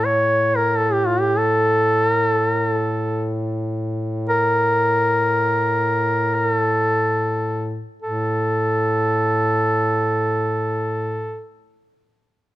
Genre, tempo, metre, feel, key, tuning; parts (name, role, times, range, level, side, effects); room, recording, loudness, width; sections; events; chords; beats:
caucasian folk, Caucasian lament; free time; A4 = 441 Hz
clear duduk; melody; 0.0-11.4 s; F4 to C#5; -18 LUFS; equal
warm duduk; drone; 0.0-11.4 s; A2; -24 LUFS; equal
light reverb; close, detailed microphones; -18 LUFS; side -16 dB against mid
0.0-8.0 A section; 8.0-11.7 B section
slowing down 0.6-8.0
free time